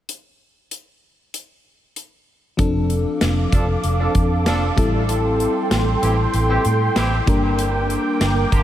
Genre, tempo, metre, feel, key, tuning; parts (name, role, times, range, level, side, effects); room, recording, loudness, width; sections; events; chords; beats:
1980s-style pop; 96 BPM; 4/4; straight; F major; A4 = 440 Hz
big rock drum kit; drums; 0.1-8.6 s; hi-hat, kick drum, snare drum; -23 LUFS; equal
FM electric piano with soft pad layer; accompaniment; 2.6-8.6 s; F3 to Bb4; -22 LUFS; left 3 dB; chorus
sweeping resonant pad; sustained chords; 2.6-8.6 s; A4 to D6; -24 LUFS; right 2 dB; chorus
vintage muted fingered electric bass; bass; 2.6-8.6 s; F1 to A2; -21 LUFS; equal
clear horn section; stabs; 3.5-8.6 s; D3 to A4; -28 LUFS; right 2 dB; analog delay
moderate huge ambient reverb, RT60 7.7 s; dreamy mix soaked in reverb; -16 LUFS; side -12 dB against mid
0.1-2.6 A section; 2.6-8.6 B section
0.1 N.C.; 2.6 F6; 4.8 Am7; 7.3 Gm
| 0.09 0.71 1.34 1.96 | 2.59 3.21 3.84 4.46 | 5.09 5.71 6.34 6.96 | 7.59 8.21